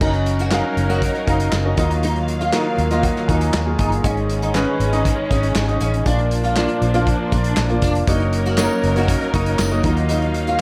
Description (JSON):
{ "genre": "piano-driven pop", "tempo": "119 BPM", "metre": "4/4", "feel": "straight", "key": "unclear", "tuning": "A4 = 442 Hz", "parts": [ { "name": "clear concert grand piano", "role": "accompaniment", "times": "0.0-10.6 s", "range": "Ab2 to Bb5", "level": "-24 LUFS", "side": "equal", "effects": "subtle chorus" }, { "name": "warm symphonic string section", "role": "sustained chords", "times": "0.0-10.6 s", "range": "Eb3 to F5", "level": "-28 LUFS", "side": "equal", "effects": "none" }, { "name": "fingerpicked steel-string acoustic guitar", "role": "riff", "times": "0.0-10.6 s", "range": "Db4 to Gb4", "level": "-28 LUFS", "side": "equal", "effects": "ensemble chorus" }, { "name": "vintage muted fingered electric bass", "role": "bass", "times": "0.0-10.6 s", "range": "F1 to Eb2", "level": "-23 LUFS", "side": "equal", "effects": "none" }, { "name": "loose indie drum kit", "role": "drums", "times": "0.0-10.6 s", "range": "crash cymbal, handclaps, hi-hat, kick drum, snare drum", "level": "-26 LUFS", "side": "equal", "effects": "none" }, { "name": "tambourine", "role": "percussion", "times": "8.6-9.7 s", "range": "none", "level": "-35 LUFS", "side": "equal", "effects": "none" } ], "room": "moderate plate reverb, RT60 1.1 s, small room ambience", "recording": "dreamy mix soaked in reverb", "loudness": "-19 LUFS", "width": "mono", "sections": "0.0-10.6 A section", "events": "grand piano fill 2.5-4.0", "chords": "0.0 Gb6; 1.8 Ebmadd9; 4.0 Absus4; 6.1 Bb; 8.1 Gb6; 9.8 Ebmadd9", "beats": "| 0.01 0.51 1.02 1.52 | 2.03 2.53 3.04 3.54 | 4.04 4.55 5.05 5.56 | 6.06 6.56 7.07 7.57 | 8.08 8.58 9.09 9.59 | 10.09 10.60" }